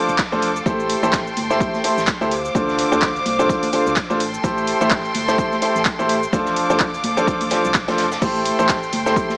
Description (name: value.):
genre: piano house.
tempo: 127 BPM.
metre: 4/4.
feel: swing 57% on 16ths.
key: A minor.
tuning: A4 = 441 Hz.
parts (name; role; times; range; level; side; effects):
rich studio violin section; sustained chords; 0.0-9.4 s; A4 to D6; -24 LUFS; equal; sidechain pumping.
clear concert grand piano; riff; 0.0-9.3 s; D3 to C5; -19 LUFS; equal; sidechain pumping.
organ-like FM bass; bass; 0.1-9.2 s; D1 to D2; -34 LUFS; equal; sidechain pumping.
punchy analog drum machine; drums; 0.1-9.4 s; crash cymbal, handclaps, hi-hat, shaker; -24 LUFS; equal; overdrive.
unplugged drum kit; drums; 0.1-9.4 s; hi-hat, snare drum; -34 LUFS; equal; none.
tambourine and congas; percussion; 0.1-9.4 s; none; -29 LUFS; equal; none.
electronic kick drum; drums; 0.2-9.3 s; none; -24 LUFS; equal; overdrive.
room: moderate lush hall reverb, RT60 2.0 s.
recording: small speaker sound.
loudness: -16 LUFS.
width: side -29 dB against mid.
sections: 0.0-9.4 A section.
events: none.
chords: 0.0 F6; 0.7 Am7; 2.3 Dm7; 4.2 Am7; 6.3 F6; 8.2 Am7.